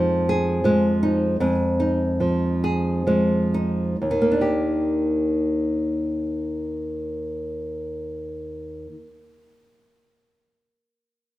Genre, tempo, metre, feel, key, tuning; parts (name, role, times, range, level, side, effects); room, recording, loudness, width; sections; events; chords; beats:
folk; 60-83 BPM; 3/4; straight; Eb major; A4 = 442 Hz
nylon-string guitar; accompaniment; 0.0-9.3 s; Eb2 to Ab4; -20 LUFS; equal
moderate large studio reverb, RT60 1.4 s; minimal, uncompressed stereo recording; -20 LUFS; side -15 dB against mid
0.0-4.0 A section; 4.0-10.0 B section
slowing down 0.0-4.0
0.0 Fm7; 4.0 Ebmaj7
0.64 | 1.40 2.20 3.07 | 4.01 5.00 5.99 | 6.98 7.97 8.96